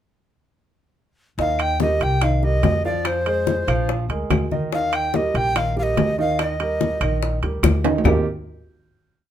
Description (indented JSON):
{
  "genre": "Afro-Cuban jazz",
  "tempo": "144 BPM",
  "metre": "4/4",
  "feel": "straight",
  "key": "Eb major",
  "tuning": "A4 = 438 Hz",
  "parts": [
    { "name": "breathy bright tenor recorder", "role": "melody", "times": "1.4-7.2 s", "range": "C5 to G5", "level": "-22 LUFS", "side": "equal", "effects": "none" },
    { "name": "warm grand piano", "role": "accompaniment", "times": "1.4-8.2 s", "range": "Eb3 to F5", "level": "-25 LUFS", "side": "right 4 dB", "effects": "none" },
    { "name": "upright bass", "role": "bass", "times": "1.4-8.2 s", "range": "Bb1 to F2", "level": "-24 LUFS", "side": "equal", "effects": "none" },
    { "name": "bongos", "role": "percussion", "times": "1.4-8.1 s", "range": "none", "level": "-27 LUFS", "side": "left 8 dB", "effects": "none" },
    { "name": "congas", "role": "percussion", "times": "1.4-8.1 s", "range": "none", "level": "-27 LUFS", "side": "left 5 dB", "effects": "none" },
    { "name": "claves", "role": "percussion", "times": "1.6-8.1 s", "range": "none", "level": "-32 LUFS", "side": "left 3 dB", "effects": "none" },
    { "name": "timbales", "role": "percussion", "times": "1.6-8.1 s", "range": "none", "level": "-26 LUFS", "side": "right 5 dB", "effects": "none" }
  ],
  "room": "moderate club reverb, RT60 0.8 s",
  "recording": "minimal, uncompressed stereo recording",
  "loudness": "-18 LUFS",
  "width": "side -10 dB against mid",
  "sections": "1.4-8.0 A section; 8.0-9.3 final chord",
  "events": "drum fill 7.6-8.0",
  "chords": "1.4 Eb6; 2.2 Cm7; 3.1 Fm; 3.9 Bb7; 4.7 Eb; 8.0 Eb69"
}